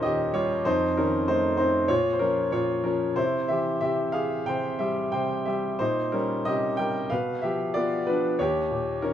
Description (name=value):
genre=classical, lyrical solo piano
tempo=93 BPM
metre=4/4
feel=uneven beats, rubato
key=unclear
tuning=A4 = 441 Hz
part: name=clear concert grand piano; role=solo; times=0.0-9.1 s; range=Eb2 to G5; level=-23 LUFS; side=equal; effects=none
room=moderate recital hall reverb, RT60 1.6 s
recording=minimal, uncompressed stereo recording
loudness=-23 LUFS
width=side -10 dB against mid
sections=0.0-9.1 A section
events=none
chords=0.0 Ebadd9; 0.7 F7; 1.9 Bbm; 3.2 C; 5.8 Cm7; 7.1 G7/B; 8.4 Eb7